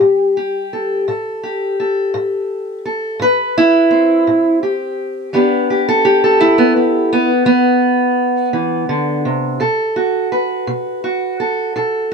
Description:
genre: acoustic country blues, solo or duo.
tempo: 56 BPM (dotted quarters).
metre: 12/8.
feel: straight.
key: E minor.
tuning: A4 = 440 Hz.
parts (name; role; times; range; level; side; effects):
fingerpicked steel-string acoustic guitar; solo; 0.0-12.1 s; A2 to B4; -13 LUFS; equal; none.
room: light reverb.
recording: none.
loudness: -13 LUFS.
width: side -5 dB against mid.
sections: 0.0-12.1 A section.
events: none.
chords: 0.0 Am9; 5.3 Em7; 9.6 B5.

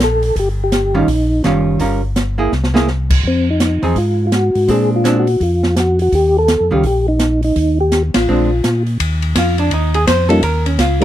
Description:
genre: soul jazz organ trio.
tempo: 167 BPM.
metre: 4/4.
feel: swing 63% on 8ths.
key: Eb mixolydian.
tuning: A4 = 440 Hz.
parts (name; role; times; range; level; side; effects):
percussive tonewheel organ; melody; 0.0-11.0 s; G3 to A4; -16 LUFS; equal; slow rotary speaker, chorus vibrato.
mellow tonewheel organ; bass; 0.0-11.0 s; Gb1 to Bb2; -17 LUFS; equal; chorus vibrato, slow rotary speaker.
open jazz drum kit; drums; 0.0-11.0 s; crash cymbal, hi-hat, kick drum, ride cymbal, snare drum; -19 LUFS; equal; none.
hollow-body jazz guitar; accompaniment; 0.9-11.0 s; Eb3 to C5; -16 LUFS; right 2 dB; none.
room: little or no reverb.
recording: dry, close 1970s-style studio recording.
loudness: -12 LUFS.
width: side -12 dB against mid.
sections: 0.0-9.0 A section; 9.0-11.0 B section.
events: drum fill 2.5-2.9; band accent 8.1; hollow-body jazz guitar solo 9.0-11.0.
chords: 0.0 Eb9; 1.8 Gm7b5; 2.5 Caug7; 3.2 Fm7; 4.7 Bb9; 6.1 Eb9; 8.3 Bb9; 9.0 Eb7sus2.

